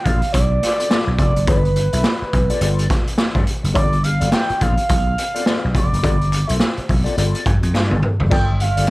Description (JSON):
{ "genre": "funk", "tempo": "105 BPM", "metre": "4/4", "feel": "swing 60% on 16ths", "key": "G mixolydian", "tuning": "A4 = 443 Hz", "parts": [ { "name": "expressive portamento lead", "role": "melody", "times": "0.0-8.9 s", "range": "B4 to G5", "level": "-23 LUFS", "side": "right 1 dB", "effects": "chorus, plate reverb" }, { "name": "mellow electric guitar", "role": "accompaniment", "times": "0.0-8.9 s", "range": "B3 to E5", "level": "-26 LUFS", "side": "left 4 dB", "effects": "wah, plate reverb" }, { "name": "vintage slap bass", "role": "bass", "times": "0.1-8.9 s", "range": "F1 to G2", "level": "-19 LUFS", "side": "equal", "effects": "none" }, { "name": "raw garage drum kit", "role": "drums", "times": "0.1-8.9 s", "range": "hi-hat, kick drum, snare drum, splash cymbal, toms", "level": "-19 LUFS", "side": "equal", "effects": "none" }, { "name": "group handclap", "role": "percussion", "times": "0.9-7.9 s", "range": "none", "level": "-32 LUFS", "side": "left 2 dB", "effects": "none" } ], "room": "light reverb", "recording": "dark, warm production", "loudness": "-15 LUFS", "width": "side -20 dB against mid", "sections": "0.0-8.9 A section", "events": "drum fill 7.7-8.3", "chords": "0.0 G9" }